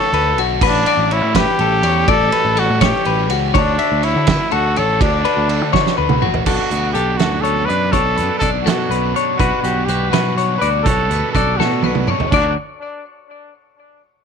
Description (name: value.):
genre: math rock and midwest emo.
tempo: 82 BPM (dotted quarters).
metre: 6/8.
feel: straight.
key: D major.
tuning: A4 = 441 Hz.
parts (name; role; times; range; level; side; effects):
mellow trumpet; melody; 0.0-12.5 s; D4 to B4; -20 LUFS; equal; none.
clean electric guitar; arpeggios; 0.0-12.6 s; F#4 to E5; -19 LUFS; left 15 dB; tape echo.
overdriven electric guitar; riff; 0.0-12.5 s; A2 to A4; -25 LUFS; right 15 dB; none.
picked electric bass; bass; 0.1-12.5 s; A1 to D3; -21 LUFS; equal; none.
loose indie drum kit; drums; 0.1-12.4 s; crash cymbal, hi-hat, kick drum, ride cymbal, snare drum, toms; -20 LUFS; right 4 dB; none.
twangy electric guitar; accompaniment; 6.5-12.6 s; D2 to F#4; -26 LUFS; right 14 dB; none.
room: studio reverb.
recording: 1960s-style stereo with parts hard left and right.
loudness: -14 LUFS.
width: side -6 dB against mid.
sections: 0.0-6.5 A section; 6.5-12.3 B section; 12.3-13.8 C section.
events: drum fill 5.7-6.5, 11.6-12.3.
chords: 0.0 Dmaj7; 0.6 A9sus4; 3.5 Dmaj7; 6.5 Bm7; 9.4 Gmaj7/B; 12.3 Dmaj7.